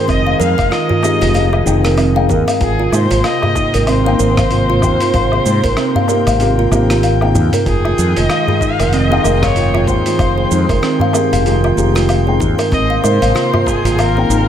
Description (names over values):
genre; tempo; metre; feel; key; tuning
organic downtempo; 95 BPM; 4/4; swing 59% on 16ths; F minor; A4 = 443 Hz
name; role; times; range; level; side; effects
rich kamancheh; melody; 0.0-14.5 s; Ab4 to F5; -20 LUFS; left 2 dB; vintage 12-bit sampler grit, diffuse ambient delay
felt-muted upright piano; accompaniment; 0.0-14.5 s; C3 to G5; -21 LUFS; left 4 dB; sidechain pumping, diffuse ambient delay
airy breathy pad; sustained chords; 0.0-14.5 s; C3 to G5; -22 LUFS; right 1 dB; chorus, sidechain pumping
kalimba; arpeggios; 0.0-14.4 s; C4 to F5; -17 LUFS; right 2 dB; diffuse ambient delay
mellow fretless electric bass; bass; 0.1-14.5 s; F1 to Ab2; -16 LUFS; equal; sidechain pumping
dusty soul sampler-style drum kit; drums; 0.1-14.4 s; hi-hat, rim click, shaker, woodblock; -24 LUFS; equal; overdrive
electronic kick drum; drums; 0.1-13.8 s; none; -19 LUFS; equal; overdrive
darbuka; percussion; 0.1-14.4 s; none; -23 LUFS; left 1 dB; none
drifting glass-harmonics texture; texture; 8.1-14.5 s; C6; -28 LUFS; right 3 dB; chorus, built-in reverb
room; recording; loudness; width
moderate plate reverb, RT60 1.4 s, small room reverb; dreamy mix soaked in reverb; -11 LUFS; side -9 dB against mid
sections
0.0-14.5 A section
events
kick drops out 6.4-7.7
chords
0.0 Fm9; 2.6 Abmaj9; 7.7 Fm9; 12.7 Abmaj9